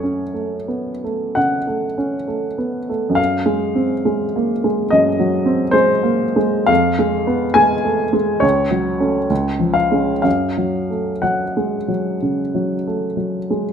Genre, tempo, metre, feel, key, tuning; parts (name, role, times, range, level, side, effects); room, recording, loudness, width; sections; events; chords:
classical, romantic character piece for solo piano; 56-75 BPM; 4/4; rubato; F# minor; A4 = 440 Hz
warm upright piano; solo; 0.0-13.7 s; C#2 to Ab5; -16 LUFS; equal
moderate recital hall reverb, RT60 1.4 s; close, detailed microphones; -16 LUFS; side -7 dB against mid
0.0-13.7 A section
0.0 F#m; 3.2 G#7/F#; 6.7 Fdim; 8.4 F#m/C#; 9.3 C#; 10.2 F#m